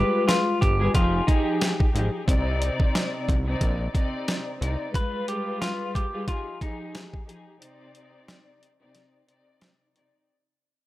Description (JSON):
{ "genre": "hip hop, boom-bap hip-hop", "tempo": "90 BPM", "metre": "4/4", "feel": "swing 57% on 16ths", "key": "C harmonic minor", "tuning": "A4 = 441 Hz", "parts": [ { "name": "clean electric guitar", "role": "melody", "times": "0.0-6.9 s", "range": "Eb4 to B4", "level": "-28 LUFS", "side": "equal", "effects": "high-pass filter, low-pass filter" }, { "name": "warm studio string section", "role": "accompaniment", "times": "0.0-10.3 s", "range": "C3 to D5", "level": "-29 LUFS", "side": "left 2 dB", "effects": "cassette tape, high-pass filter, low-pass filter" }, { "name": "fat analog bass", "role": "bass", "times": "0.0-4.8 s", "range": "F1 to C2", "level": "-25 LUFS", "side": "equal", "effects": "none" }, { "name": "boom bap sampler-style drum kit", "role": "drums", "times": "0.3-10.1 s", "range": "hi-hat, kick drum, snare drum", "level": "-24 LUFS", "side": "equal", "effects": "none" } ], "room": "little or no reverb", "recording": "none", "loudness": "-22 LUFS", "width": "side -16 dB against mid", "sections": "0.0-10.3 A section", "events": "fade-out 0.0-10.3; break 4.9-10.3", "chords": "0.0 G7b9; 0.9 Fm9; 2.3 Cmadd9; 4.9 G7b9; 6.3 Fm9; 7.6 Cmadd9" }